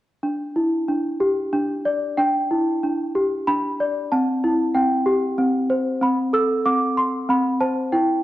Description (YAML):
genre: children's music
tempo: 94 BPM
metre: 3/4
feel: rubato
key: E minor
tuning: A4 = 440 Hz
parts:
  - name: small celesta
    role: melody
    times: 0.2-8.2 s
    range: C4 to E6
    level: -19 LUFS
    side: equal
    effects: none
room: wet recital hall reverb, RT60 1.7 s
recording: dark, warm production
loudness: -19 LUFS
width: side -15 dB against mid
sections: 0.2-2.2 A section; 2.2-8.2 B section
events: none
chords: 0.2 Em7; 4.1 C; 6.0 Am/C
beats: | 0.23 0.88 1.52 | 2.17 2.82 3.47 | 4.11 4.75 5.38 | 6.02 6.65 7.29 | 7.93